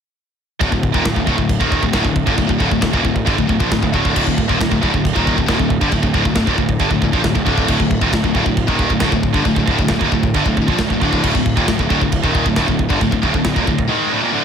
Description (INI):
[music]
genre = heavy metal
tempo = 136 BPM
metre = 4/4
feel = straight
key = unclear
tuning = A4 = 440 Hz
[part]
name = heavy high-gain guitar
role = riff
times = 0.6-14.4 s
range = D2 to G#3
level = -21 LUFS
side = right 12 dB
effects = distortion
[part]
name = high-gain distorted guitar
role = riff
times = 0.6-14.4 s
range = D2 to G#3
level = -21 LUFS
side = left 10 dB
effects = distortion
[part]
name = tight distorted guitar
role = riff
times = 0.6-14.4 s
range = D2 to G#3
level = -22 LUFS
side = equal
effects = distortion
[part]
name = fuzz picked electric bass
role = bass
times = 0.6-13.9 s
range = D1 to Bb1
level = -21 LUFS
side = equal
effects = overdrive
[part]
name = tight metal drum kit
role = drums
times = 0.6-13.9 s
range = china cymbal, crash cymbal, kick drum, snare drum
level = -19 LUFS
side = equal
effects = none
[sound]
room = small room ambience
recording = none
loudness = -14 LUFS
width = side -7 dB against mid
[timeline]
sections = 0.6-14.4 A section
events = none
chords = 0.6 D5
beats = | 0.62 1.06 1.50 1.94 | 2.39 2.83 3.27 3.71 | 4.16 4.60 5.04 5.48 | 5.92 6.37 6.81 7.25 | 7.70 8.14 8.58 9.02 | 9.47 9.91 10.35 10.79 | 11.24 11.68 12.12 12.57 | 13.01 13.45 13.90 14.34